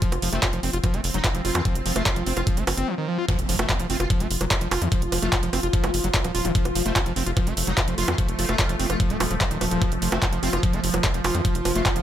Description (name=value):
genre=psychedelic trance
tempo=147 BPM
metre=4/4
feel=straight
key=F major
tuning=A4 = 440 Hz
part: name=swarming drone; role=sustained chords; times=0.0-12.0 s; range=F3 to F4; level=-30 LUFS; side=equal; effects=built-in reverb, sidechain pumping
part: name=screaming distorted acid line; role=riff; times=0.0-12.0 s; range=Eb3 to F4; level=-29 LUFS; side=left 1 dB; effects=distortion, chorus, auto-pan, sidechain pumping, tape echo
part: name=drum and bass drum kit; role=drums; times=0.0-12.0 s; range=bongos, handclaps, hi-hat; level=-26 LUFS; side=right 2 dB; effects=overdrive, studio reverb
part: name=electronic kick drum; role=drums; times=0.0-11.9 s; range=none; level=-23 LUFS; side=equal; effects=studio reverb
part: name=tight sequencer bass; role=bass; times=0.1-12.0 s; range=Eb1 to F2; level=-27 LUFS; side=equal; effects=none
part: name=metallic wobble bass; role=second line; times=0.3-11.9 s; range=C4 to F4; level=-36 LUFS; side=right 2 dB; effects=ensemble chorus, sidechain pumping, high-pass filter, tape echo
part: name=impact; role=sound effects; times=3.3-4.9 s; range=none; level=-34 LUFS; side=equal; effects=none
room=light reverb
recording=none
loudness=-21 LUFS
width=side -11 dB against mid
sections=0.0-3.3 A section; 3.3-12.0 B section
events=break 2.9-3.3; drop 3.3-12.0; impact 3.3-4.9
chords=0.0 F5